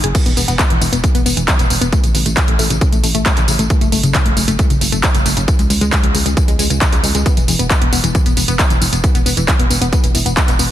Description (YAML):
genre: uplifting trance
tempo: 135 BPM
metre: 4/4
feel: straight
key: E major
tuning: A4 = 439 Hz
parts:
  - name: wide unison pluck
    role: arpeggios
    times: 0.0-10.7 s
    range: C#3 to G#4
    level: -20 LUFS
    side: left 2 dB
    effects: sidechain pumping, ping-pong delay
  - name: solid FM bass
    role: bass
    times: 0.0-10.7 s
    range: E1 to C#2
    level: -19 LUFS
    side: equal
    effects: sidechain pumping
  - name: house drum kit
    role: drums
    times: 0.0-10.7 s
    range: crash cymbal, handclaps, hi-hat, tambourine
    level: -18 LUFS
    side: right 1 dB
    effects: overdrive
  - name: electronic kick drum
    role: drums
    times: 0.1-10.5 s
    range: none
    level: -15 LUFS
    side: equal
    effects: overdrive
room: light reverb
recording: dense, heavily limited modern master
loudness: -12 LUFS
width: side -12 dB against mid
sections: 0.0-10.7 A section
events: filter sweep on synth arpeggio sound 0.0-10.7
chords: 0.1 E5; 1.9 A; 3.7 F#m; 5.5 C#5; 7.3 E5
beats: | 0.15 0.59 1.04 1.48 | 1.93 2.37 2.81 3.26 | 3.70 4.15 4.59 5.04 | 5.48 5.92 6.37 6.81 | 7.26 7.70 8.15 8.59 | 9.04 9.48 9.93 10.37